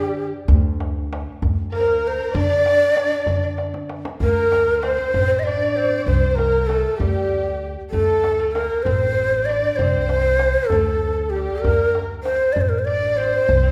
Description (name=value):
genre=Persian modal ensemble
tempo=64 BPM (dotted quarters)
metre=6/8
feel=straight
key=D dastgah shur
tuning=A4 = 438 Hz
part: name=breathy ney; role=melody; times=0.0-13.7 s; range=G4 to Eb5+43c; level=-22 LUFS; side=equal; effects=none
part: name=lute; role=second line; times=0.0-13.7 s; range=G3 to D4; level=-31 LUFS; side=equal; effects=none
part: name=rich studio violin section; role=second line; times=0.0-13.7 s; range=G4 to D5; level=-31 LUFS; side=equal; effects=none
part: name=upright bass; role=bass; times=0.0-13.7 s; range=A1 to D3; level=-26 LUFS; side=equal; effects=none
part: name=tombak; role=percussion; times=0.5-13.6 s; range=none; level=-28 LUFS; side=equal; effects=none
room=wet scoring stage reverb, RT60 1.5 s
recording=recorded in a church or concert hall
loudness=-20 LUFS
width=mono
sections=0.0-4.2 A section; 4.2-13.7 B section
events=drum fill 3.6-4.2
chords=none